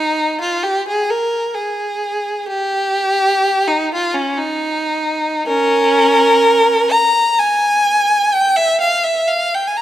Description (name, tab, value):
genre	classical, free, expressive piece for unaccompanied violin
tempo	63 BPM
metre	3/4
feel	rubato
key	unclear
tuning	A4 = 440 Hz
part	rich violin	solo	0.0-9.8 s	Db4 to Bb5	-13 LUFS	equal	none
room	moderate scoring stage reverb, RT60 1.6 s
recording	none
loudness	-13 LUFS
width	side -12 dB against mid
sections	0.0-9.8 A section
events	none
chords	none